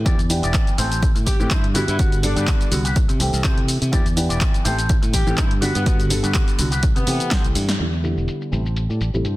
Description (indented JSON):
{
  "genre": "filtered disco house",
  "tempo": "124 BPM",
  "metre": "4/4",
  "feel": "swing 55% on 16ths",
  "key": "E minor",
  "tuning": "A4 = 440 Hz",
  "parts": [
    { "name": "dark grand piano", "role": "accompaniment", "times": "0.0-9.2 s", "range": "C3 to A4", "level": "-26 LUFS", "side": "equal", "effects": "phaser, sidechain pumping, low-pass filter" },
    { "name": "modern bright fingered electric bass", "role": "bass", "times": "0.0-9.4 s", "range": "E1 to C3", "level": "-22 LUFS", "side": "equal", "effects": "sidechain pumping, low-pass filter" },
    { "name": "electric guitar with an envelope filter", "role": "riff", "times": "0.1-9.4 s", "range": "E4 to D5", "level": "-30 LUFS", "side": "left 1 dB", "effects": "sidechain pumping, low-pass filter" },
    { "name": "electronic kick drum", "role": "drums", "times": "0.1-7.4 s", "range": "none", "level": "-19 LUFS", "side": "equal", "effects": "none" },
    { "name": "punchy analog drum machine", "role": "drums", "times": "0.1-9.4 s", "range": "handclaps, hi-hat, shaker, snare drum", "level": "-26 LUFS", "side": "equal", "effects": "sidechain pumping on hats, low-pass filter on hats, low-pass filter on snare, sidechain pumping on perc, low-pass filter on perc, low-pass filter on room" },
    { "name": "warm horn section", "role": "melody", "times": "1.3-7.4 s", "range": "B3 to G4", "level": "-29 LUFS", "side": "left 1 dB", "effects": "sidechain pumping, low-pass filter" }
  ],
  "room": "digital ambience",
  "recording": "dense, heavily limited modern master",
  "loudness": "-17 LUFS",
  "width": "side -18 dB against mid",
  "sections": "0.0-7.8 A section; 7.8-9.4 B section",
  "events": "drum fill 7.3-7.8; band accent 7.7; filter sweep on drum 7.8-9.4; filter sweep 7.8-9.4",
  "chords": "0.1 Em7; 0.8 Am7; 1.8 Gmaj7; 3.0 C6; 3.9 Em7; 4.7 Am7; 5.6 Gmaj7; 6.8 C6; 7.8 Em7; 8.5 Am7"
}